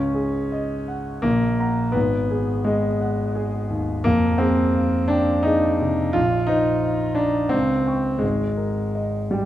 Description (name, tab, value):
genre	classical, impressionist solo piano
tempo	86 BPM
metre	3/4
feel	uneven beats, rubato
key	F minor from 4.1 s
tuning	A4 = 439 Hz
part	warm concert grand piano	solo	0.0-9.5 s	Ab1 to Db6	-19 LUFS	equal	none
room	wet scoring stage reverb, RT60 1.8 s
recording	dark, warm production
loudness	-19 LUFS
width	side -13 dB against mid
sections	0.0-9.5 A section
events	none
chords	0.0 Dbsus24; 1.2 Gb/Bb; 2.0 Abm7; 4.1 Fm9; 6.2 Bbsus2; 7.5 C5; 8.2 Absus2